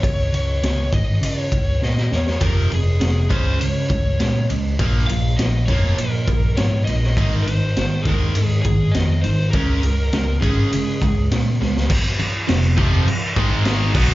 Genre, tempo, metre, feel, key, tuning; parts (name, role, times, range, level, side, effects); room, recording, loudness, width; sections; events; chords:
hard rock; 101 BPM; 4/4; straight; A4 = 439 Hz
lead guitar through a small cranked amp; melody; 0.0-11.3 s; Ab4 to F5; -27 LUFS; left 1 dB; overdrive
overdriven picked electric bass; bass; 0.0-14.1 s; F1 to Db3; -19 LUFS; equal
raw garage drum kit; drums; 0.0-14.1 s; crash cymbal, kick drum, ride cymbal, snare drum; -22 LUFS; equal
cranked stack guitar; riff; 2.4-14.1 s; F2 to Db4; -24 LUFS; right 1 dB; overdrive
high-gain distorted guitar; riff; 11.9-14.1 s; F2 to B3; -24 LUFS; right 1 dB; distortion, slapback echo
little or no reverb; live gig heard through the venue's PA, club reverb, nothing above 7.5 kHz; -16 LUFS; side -17 dB against mid
0.0-11.9 A section; 11.9-14.1 B section
drum fill 1.8-2.4, 11.6
0.0 Db5; 2.4 Fm; 3.3 Db5; 4.8 Bb5; 7.2 Ab; 9.5 Db5; 11.9 F5; 13.4 Ab5